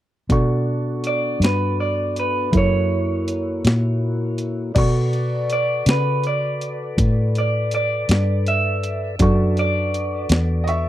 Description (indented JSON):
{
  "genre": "slow blues",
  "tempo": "54 BPM (dotted quarters)",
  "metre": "12/8",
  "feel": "straight",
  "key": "B minor",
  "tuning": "A4 = 440 Hz",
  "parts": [
    { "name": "dark baby grand piano", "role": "accompaniment", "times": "0.3-10.9 s", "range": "D4 to C#6", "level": "-27 LUFS", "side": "right 2 dB", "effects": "none" },
    { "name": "mellow tonewheel organ", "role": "sustained chords", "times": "0.3-10.9 s", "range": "A#3 to D5", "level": "-30 LUFS", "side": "left 4 dB", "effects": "slow rotary speaker" },
    { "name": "vintage muted fingered electric bass", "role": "bass", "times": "0.3-10.9 s", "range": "E2 to C#3", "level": "-21 LUFS", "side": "equal", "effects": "none" },
    { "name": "breakbeat sampler-style drum kit", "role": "drums", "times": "0.3-10.8 s", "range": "crash cymbal, hi-hat, kick drum, snare drum", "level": "-22 LUFS", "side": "equal", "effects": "none" },
    { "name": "electric guitar through a small old amp", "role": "melody", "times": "1.1-10.9 s", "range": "B4 to E5", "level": "-23 LUFS", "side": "right 2 dB", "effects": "spring reverb" },
    { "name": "bright upright piano", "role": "second line", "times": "10.6-10.9 s", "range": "D#5 to C#6", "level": "-22 LUFS", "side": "right 1 dB", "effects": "none" }
  ],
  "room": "little or no reverb",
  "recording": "dry, close 1970s-style studio recording",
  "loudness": "-18 LUFS",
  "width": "side -13 dB against mid",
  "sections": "0.3-4.8 A section; 4.8-10.9 B section",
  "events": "none",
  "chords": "0.3 Bm7; 2.5 F#7#9; 4.8 Bm9",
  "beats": "| 0.29 1.41 2.52 3.64 | 4.75 5.86 6.98 8.09 | 9.20 10.31"
}